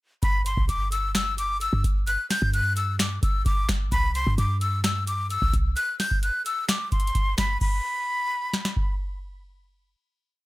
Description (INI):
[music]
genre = hip hop, trap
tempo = 130 BPM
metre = 4/4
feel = half-time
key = G major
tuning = A4 = 438 Hz
[part]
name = breathy jazz flute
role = melody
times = 0.2-9.0 s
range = B5 to G6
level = -27 LUFS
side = left 1 dB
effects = ping-pong delay
[part]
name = clean 808-style bass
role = bass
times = 0.2-5.8 s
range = G1 to G2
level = -26 LUFS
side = equal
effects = none
[part]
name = booming analog drum machine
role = drums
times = 0.2-8.9 s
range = crash cymbal, finger snaps, hi-hat, kick drum, snare drum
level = -25 LUFS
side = equal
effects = none
[sound]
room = little or no reverb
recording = none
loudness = -22 LUFS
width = side -18 dB against mid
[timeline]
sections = 0.2-7.6 hook; 7.6-10.4 final note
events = none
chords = 0.2 G5; 3.9 C5; 7.6 N.C.